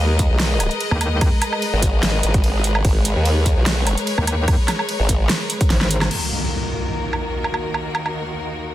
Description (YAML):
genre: heavy wobble dubstep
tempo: 147 BPM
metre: 4/4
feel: swing 53% on 16ths, half-time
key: Eb minor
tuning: A4 = 440 Hz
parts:
  - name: bright studio string section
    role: sustained chords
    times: 0.0-8.7 s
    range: Eb2 to Eb5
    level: -25 LUFS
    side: left 1 dB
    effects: sidechain pumping
  - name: formant-sweep wobble bass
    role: bass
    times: 0.0-5.3 s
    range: Ab1 to Eb2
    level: -18 LUFS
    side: equal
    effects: chorus, overdrive
  - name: big-room dance drum kit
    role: drums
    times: 0.2-8.1 s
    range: crash cymbal, hi-hat, ride cymbal, snare drum, woodblock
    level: -23 LUFS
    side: right 1 dB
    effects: overdrive, small room ambience
  - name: electronic kick drum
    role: drums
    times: 0.2-5.7 s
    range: none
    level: -18 LUFS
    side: equal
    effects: overdrive, small room ambience
  - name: metallic wobble bass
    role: bass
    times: 0.9-1.3, 4.2-6.1 s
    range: Ab1 to Eb2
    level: -19 LUFS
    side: equal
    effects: chorus, overdrive
  - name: impact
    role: sound effects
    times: 6.1-7.7 s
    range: none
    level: -27 LUFS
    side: equal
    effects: none
room: light reverb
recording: dense, heavily limited modern master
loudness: -17 LUFS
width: side -14 dB against mid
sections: 0.0-6.1 A section; 6.1-8.7 B section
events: drop 0.0-6.1; drum fill 5.7-6.1; band accent 6.0; impact 6.1-7.7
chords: 0.0 Abmadd9; 6.1 Ebm